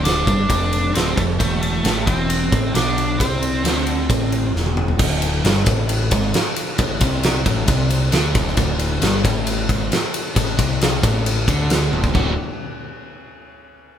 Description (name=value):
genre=blues rock power trio and southern rock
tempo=134 BPM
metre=4/4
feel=straight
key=unclear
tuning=A4 = 440 Hz
part: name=nasal lead guitar with a parked wah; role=melody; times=0.0-4.5 s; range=A3 to D4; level=-22 LUFS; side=right 1 dB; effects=overdrive
part: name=overdriven semi-hollow guitar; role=riff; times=0.0-12.3 s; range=D2 to F#4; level=-23 LUFS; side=equal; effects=spring reverb
part: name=growling picked electric bass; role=bass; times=0.0-12.4 s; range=D1 to D2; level=-22 LUFS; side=equal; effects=overdrive
part: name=big rock drum kit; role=drums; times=0.1-12.3 s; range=crash cymbal, kick drum, ride cymbal, snare drum, toms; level=-20 LUFS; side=equal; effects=none
room=light reverb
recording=band playing live in one room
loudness=-16 LUFS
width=side -9 dB against mid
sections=0.0-5.0 A section; 5.0-12.1 B section; 12.1-13.9 C section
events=drum fill 4.5-5.0, 11.9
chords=0.0 Dm; 1.4 Cmaj13/E; 5.0 D5; 12.1 D